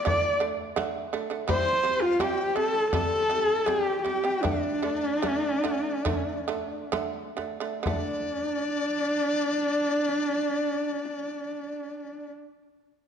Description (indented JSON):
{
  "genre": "mongolian traditional, Mongolian folk",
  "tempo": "63-84 BPM",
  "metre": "4/4",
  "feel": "straight",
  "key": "unclear",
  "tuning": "A4 = 440 Hz",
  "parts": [
    { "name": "warm horsehead fiddle", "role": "melody", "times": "0.0-12.3 s", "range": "D4 to D5", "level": "-26 LUFS", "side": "equal", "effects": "none" },
    { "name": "dizi", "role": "second line", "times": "0.0-12.3 s", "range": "D5 to D6", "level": "-33 LUFS", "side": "left 4 dB", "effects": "none" },
    { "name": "shamisen", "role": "arpeggios", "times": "0.1-12.3 s", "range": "C3 to A3", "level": "-31 LUFS", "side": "right 6 dB", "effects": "none" },
    { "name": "frame drum", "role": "percussion", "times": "0.1-8.3 s", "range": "none", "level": "-33 LUFS", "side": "left 2 dB", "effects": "none" }
  ],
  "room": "moderate recital hall reverb, RT60 1.6 s",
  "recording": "dark, warm production",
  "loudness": "-25 LUFS",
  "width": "side -7 dB against mid",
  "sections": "0.0-7.9 A section; 7.9-11.7 B section",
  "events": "slowing down 1.5-7.9",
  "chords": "0.0 D5; 1.5 C5; 4.4 D5",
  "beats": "0.06 0.77 | 1.48 2.20 2.93 3.67 | 4.44 5.23 6.06 6.93 | 7.86 8.81 9.77 10.73"
}